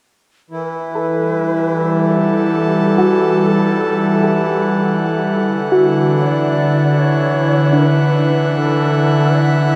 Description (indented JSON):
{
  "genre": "ambient",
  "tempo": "74 BPM",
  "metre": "3/4",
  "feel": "straight",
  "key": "E minor",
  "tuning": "A4 = 439 Hz",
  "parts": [
    { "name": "breathy shakuhachi", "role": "melody", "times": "0.5-9.8 s", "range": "G4 to E5", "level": "-26 LUFS", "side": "equal", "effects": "tape echo" },
    { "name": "airy breathy pad", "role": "sustained chords", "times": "1.0-9.8 s", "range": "D3 to F#5", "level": "-17 LUFS", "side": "equal", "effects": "chorus" },
    { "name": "hand-pumped harmonium", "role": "drone", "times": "0.5-9.8 s", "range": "E3 to E4", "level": "-24 LUFS", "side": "equal", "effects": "none" },
    { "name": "soft round pluck", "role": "arpeggios", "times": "1.0-8.8 s", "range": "D4 to A4", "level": "-24 LUFS", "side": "equal", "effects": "ensemble chorus, tape echo" }
  ],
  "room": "wet cathedral reverb, RT60 5.6 s",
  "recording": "in a vast, echoing space",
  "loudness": "-15 LUFS",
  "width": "mono",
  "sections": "0.5-9.8 A section",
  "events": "fade-in on shakuhachi 0.5-9.8",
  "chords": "0.5 Emadd9; 5.4 D",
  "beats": "| 0.50 1.31 2.12 | 2.93 3.74 4.55 | 5.37 6.18 6.99 | 7.80 8.61 9.42"
}